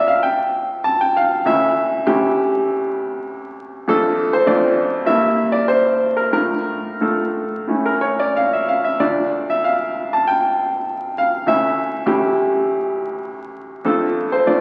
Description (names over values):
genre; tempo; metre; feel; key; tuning
classical, romantic character piece for solo piano; 89-103 BPM; 4/4; rubato; D minor; A4 = 437 Hz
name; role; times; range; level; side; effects
bright upright piano; solo; 0.0-14.6 s; D2 to A5; -19 LUFS; equal; none
room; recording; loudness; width
wet recital hall reverb, RT60 1.9 s; very old 78 rpm record, vinyl crackle, lossy compression artefacts; -19 LUFS; mono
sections
0.0-14.6 A section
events
none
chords
0.0 Dm; 1.5 A7/D; 3.9 Dm/F; 5.1 Edim/G; 6.3 Dm/A; 7.7 A; 9.0 Dm; 11.5 A7/D; 13.9 Dm/F